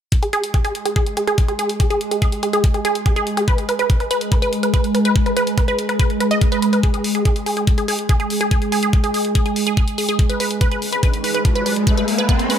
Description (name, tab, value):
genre	psychedelic trance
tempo	143 BPM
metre	4/4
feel	straight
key	unclear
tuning	A4 = 441 Hz
part	evolving wavetable pad	sustained chords	0.8-12.6 s	Ab3	-22 LUFS	right 1 dB	phaser, built-in reverb, sidechain pumping
part	electronic hi-hat	drums	0.1-12.6 s	none	-28 LUFS	left 1 dB	studio ambience
part	electronic kick drum	drums	0.1-12.4 s	none	-17 LUFS	equal	studio ambience
part	wide unison pluck	riff	0.2-12.6 s	Ab4 to Eb5	-21 LUFS	right 1 dB	auto-pan, sidechain pumping, tape echo
part	riser	sound effects	11.0-12.6 s	none	-24 LUFS	left 2 dB	none
room	moderate lush hall reverb, RT60 1.7 s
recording	none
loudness	-16 LUFS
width	side -9 dB against mid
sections	0.1-12.6 A section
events	filter sweep on synth arpeggio sound 0.1-12.6; riser 11.0-12.6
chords	0.1 N.C.; 3.5 Abm; 6.8 N.C.; 10.2 Abm